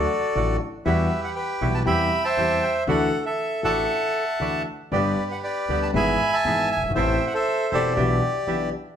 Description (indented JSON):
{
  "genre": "tango",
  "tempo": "119 BPM",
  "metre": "4/4",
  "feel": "rubato",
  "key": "unclear",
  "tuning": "A4 = 440 Hz",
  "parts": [
    { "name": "bandoneon", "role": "melody", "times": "0.0-8.7 s", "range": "F#4 to B5", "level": "-23 LUFS", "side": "right 1 dB", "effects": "none" },
    { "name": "warm concert grand piano", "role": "accompaniment", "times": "0.0-8.7 s", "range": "E1 to A4", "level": "-26 LUFS", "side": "left 2 dB", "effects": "none" },
    { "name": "bandoneon", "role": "stabs", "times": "0.0-8.7 s", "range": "G3 to A4", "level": "-31 LUFS", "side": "right 6 dB", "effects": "none" },
    { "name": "upright bass", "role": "bass", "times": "0.0-8.7 s", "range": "E1 to E2", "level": "-31 LUFS", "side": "right 1 dB", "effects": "none" }
  ],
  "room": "wet large studio reverb, RT60 1.0 s",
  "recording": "band playing live in one room",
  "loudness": "-20 LUFS",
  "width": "side -8 dB against mid",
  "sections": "0.0-9.0 A section",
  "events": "none",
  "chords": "0.0 D; 0.9 Emadd9; 1.9 C/E; 2.9 Dadd9; 4.9 G; 5.9 E/G#; 7.0 Am; 8.0 Em7/B"
}